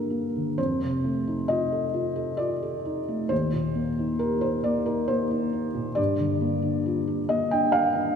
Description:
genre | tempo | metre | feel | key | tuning
neoclassical minimalist piano | 67 BPM | 3/4 | rubato | unclear | A4 = 444 Hz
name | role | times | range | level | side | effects
felt-muted upright piano | solo | 0.0-8.2 s | Eb2 to F6 | -24 LUFS | equal | none
room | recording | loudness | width
wet church reverb, RT60 3.4 s | recorded in a church or concert hall | -24 LUFS | side -7 dB against mid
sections
0.6-8.2 A section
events
none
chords
0.0 Gm7; 0.6 F7; 3.3 Cm7/Eb; 6.0 Gm7

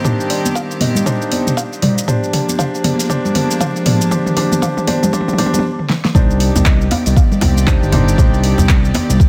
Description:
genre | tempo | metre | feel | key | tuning
afro house | 118 BPM | 4/4 | swing 60% on 16ths | C minor | A4 = 440 Hz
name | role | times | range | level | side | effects
kalimba | melody | 0.0-7.9 s | C5 to G5 | -30 LUFS | equal | dub echo
warm chamber string section | sustained chords | 0.0-9.3 s | Eb3 to D5 | -26 LUFS | equal | sidechain pumping
felt-muted upright piano | stabs | 0.0-9.3 s | D4 to C5 | -24 LUFS | equal | sidechain pumping, tape echo
deep house drum kit | drums | 0.0-9.3 s | handclaps, hi-hat, shaker, snare drum, toms | -21 LUFS | equal | none
electronic kick drum | drums | 0.0-9.3 s | none | -15 LUFS | equal | high-pass filter on kick
congas | percussion | 0.0-9.2 s | none | -24 LUFS | equal | none
smooth gliding synth bass | bass | 6.1-9.2 s | G1 to C2 | -17 LUFS | equal | sidechain pumping
djembe | percussion | 6.2-9.3 s | none | -22 LUFS | equal | none
room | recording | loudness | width
light reverb, small room ambience | none | -15 LUFS | mono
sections
0.0-6.1 A section; 6.1-9.3 B section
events
build-up 0.0-6.1; drum fill 0.0-5.6, 5.8-6.1; stop 5.6-6.1; drop 6.1-9.3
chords
0.0 Cmadd9; 2.1 Bb7; 6.1 Cmadd9

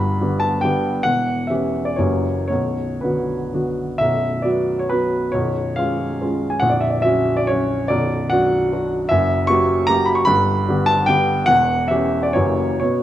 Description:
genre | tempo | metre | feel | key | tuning
classical, romantic triple-time dance for piano with dotted rhythms | 109-160 BPM | 3/4 | rubato | B minor | A4 = 438 Hz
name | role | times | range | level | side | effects
warm grand piano | solo | 0.0-13.0 s | A#0 to C#6 | -16 LUFS | equal | none
room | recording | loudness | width
moderate recital hall reverb, RT60 1.8 s | close, detailed microphones | -16 LUFS | side -12 dB against mid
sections
0.0-4.0 A section; 4.0-13.0 A section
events
none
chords
0.0 G; 1.1 C#dim/E; 2.0 F#7b9; 2.5 Bm; 4.0 B5; 5.3 C#7/B; 6.6 F#/A#; 7.9 Bm; 9.1 F#7b9; 10.3 G; 11.5 C#dim/E; 12.4 F#7b9

